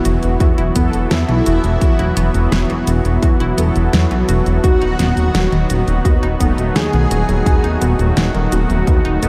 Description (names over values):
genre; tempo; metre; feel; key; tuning
synthwave; 85 BPM; 4/4; straight; unclear; A4 = 440 Hz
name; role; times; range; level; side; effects
warm analog pad; sustained chords; 0.0-9.3 s; D#3 to F#4; -24 LUFS; equal; chorus, tremolo, sidechain pumping
mellow synth brass; stabs; 0.0-9.3 s; A3 to A4; -27 LUFS; equal; chorus, delay
impact; sound effects; 0.0-1.8 s; none; barely audible; none; none
analog pluck; arpeggios; 0.1-9.3 s; D#3 to F#4; -27 LUFS; equal; chorus, delay
chorused synth bass; bass; 0.1-9.3 s; D#1 to E2; -19 LUFS; equal; sidechain pumping
pop drum kit; drums; 0.1-9.3 s; cabasa, hi-hat, snare drum; -26 LUFS; equal; studio ambience
electronic kick drum; drums; 0.4-9.0 s; none; -17 LUFS; equal; studio ambience
unison lead; melody; 1.1-7.7 s; E4 to G#4; -26 LUFS; equal; delay
string machine, violins; second line; 1.1-7.7 s; E4 to G#4; -36 LUFS; equal; none
room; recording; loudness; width
moderate cathedral reverb, RT60 5.7 s; dreamy mix soaked in reverb; -15 LUFS; mono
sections
0.0-9.3 A section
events
impact 0.0-1.8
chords
0.0 Esus2; 4.6 B/D#